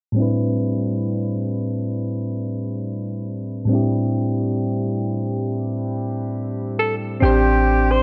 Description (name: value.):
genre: contemporary R&B.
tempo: 68 BPM.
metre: 4/4.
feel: swing 54% on 16ths.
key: A minor.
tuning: A4 = 441 Hz.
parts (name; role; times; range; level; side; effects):
soft electric-piano-like synth keys; accompaniment; 0.1-8.0 s; A2 to C5; -23 LUFS; equal; chorus.
breathy alto saxophone; melody; 6.8-8.0 s; G4 to C5; -22 LUFS; equal; none.
warm 808-style bass; bass; 7.2-8.0 s; A1; -20 LUFS; equal; none.
room: light reverb, studio reverb.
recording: worn, warbling old tape, cassette tape, warbly pitch drift, low-pass filter.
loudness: -22 LUFS.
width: mono.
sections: 0.2-7.2 A section.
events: filter sweep 0.2-7.2.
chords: 0.2 Am11.